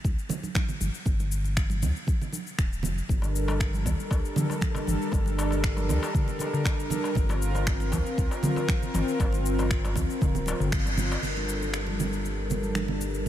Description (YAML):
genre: afro house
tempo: 118 BPM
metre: 4/4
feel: straight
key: G minor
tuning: A4 = 445 Hz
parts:
  - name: warm sub bass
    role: bass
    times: 0.0-13.3 s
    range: D1 to D2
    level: -29 LUFS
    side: equal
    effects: sidechain pumping
  - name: electronic kick drum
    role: drums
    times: 0.0-10.8 s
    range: none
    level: -27 LUFS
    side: equal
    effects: none
  - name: congas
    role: percussion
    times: 0.0-13.3 s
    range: none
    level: -35 LUFS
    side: right 5 dB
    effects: none
  - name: afro-pop drum kit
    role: drums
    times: 0.1-13.3 s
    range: crash cymbal, finger snaps, shaker, toms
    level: -34 LUFS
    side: left 2 dB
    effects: none
  - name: warm analog pad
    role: sustained chords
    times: 3.1-13.3 s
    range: G3 to Bb4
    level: -30 LUFS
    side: equal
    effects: chorus, sidechain pumping
  - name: darbuka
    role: percussion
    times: 3.2-11.2 s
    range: none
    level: -35 LUFS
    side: left 3 dB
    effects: none
room: light reverb, digital ambience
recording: none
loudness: -25 LUFS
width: side -12 dB against mid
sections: 0.0-11.2 A section; 11.2-13.3 B section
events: band accent 10.7; filter sweep on analog synth pad 11.2-13.3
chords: 0.0 Dsus4; 3.1 Gm; 7.2 Bbsus2/G; 11.2 Gm